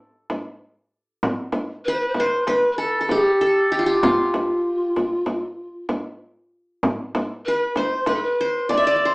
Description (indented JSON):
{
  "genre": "Turkish makam ensemble",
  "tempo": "193 BPM (eighths)",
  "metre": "9/8",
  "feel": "straight",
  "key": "A makam ussak",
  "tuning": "A4 = 440 Hz",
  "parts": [
    { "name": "qanun", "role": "melody", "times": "0.0-9.1 s", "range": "F4 to E5", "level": "-21 LUFS", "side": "equal", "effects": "plate reverb" },
    { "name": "frame drum", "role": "percussion", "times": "0.3-8.8 s", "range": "none", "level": "-24 LUFS", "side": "equal", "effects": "none" },
    { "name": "mellow polished pan flute", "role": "second line", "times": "1.8-9.1 s", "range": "F4 to D5", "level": "-22 LUFS", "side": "equal", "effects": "none" }
  ],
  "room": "wet studio reverb, RT60 0.6 s",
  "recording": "heard from further back in the room, small speaker sound",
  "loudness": "-19 LUFS",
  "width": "side -35 dB against mid",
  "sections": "0.0-1.2 A section; 1.2-9.1 B section",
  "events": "none",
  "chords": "none"
}